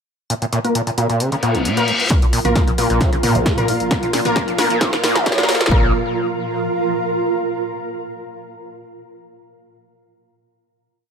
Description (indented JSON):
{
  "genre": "driving peak-time techno",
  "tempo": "133 BPM",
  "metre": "4/4",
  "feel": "straight",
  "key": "unclear",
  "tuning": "A4 = 440 Hz",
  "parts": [
    { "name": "screaming distorted acid line", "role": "riff", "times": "0.3-5.9 s", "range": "Bb1 to Db3", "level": "-21 LUFS", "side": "equal", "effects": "distortion, wide subtle chorus, sidechain pumping, ping-pong delay" },
    { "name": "punchy analog drum machine", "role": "drums", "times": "0.3-5.7 s", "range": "hi-hat, snare drum, toms", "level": "-22 LUFS", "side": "equal", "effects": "none" },
    { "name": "granular cloud pad", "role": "texture", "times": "1.6-7.5 s", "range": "F4 to Bb5", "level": "-23 LUFS", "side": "right 1 dB", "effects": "built-in reverb, sidechain pumping" },
    { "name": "rave stab", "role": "stabs", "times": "0.6-5.9 s", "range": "Bb3 to Bb4", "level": "-22 LUFS", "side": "left 1 dB", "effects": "chorus, built-in reverb, sidechain pumping, ping-pong delay" },
    { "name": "reverse cymbal and riser", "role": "sound effects", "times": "1.4-5.7 s", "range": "none", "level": "-25 LUFS", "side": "left 1 dB", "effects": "none" },
    { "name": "swarming drone", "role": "drone", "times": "3.1-5.8 s", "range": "Bb2", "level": "-30 LUFS", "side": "right 1 dB", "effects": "built-in reverb, sidechain pumping" },
    { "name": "electronic kick drum", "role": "drums", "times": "2.1-5.8 s", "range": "none", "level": "-18 LUFS", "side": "equal", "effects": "none" },
    { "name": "saturated sub bass", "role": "bass", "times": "2.2-5.9 s", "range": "Bb1", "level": "-26 LUFS", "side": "equal", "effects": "overdrive, sidechain pumping, low-pass filter" }
  ],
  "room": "moderate stone room reverb, RT60 1.0 s",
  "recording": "high-pass filter",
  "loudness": "-15 LUFS",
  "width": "side -6 dB against mid",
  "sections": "0.3-2.1 intro; 2.1-5.7 build; 5.7-7.5 final chord",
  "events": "filter sweep on acid bass 0.3-2.1, 2.1-5.7; filter sweep on synth stab 0.3-2.1; reverse cymbal 1.4-2.1; build-up 2.1-5.7; drum fill 2.1-5.7; filter sweep 2.1-5.7",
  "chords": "0.3 Bb5"
}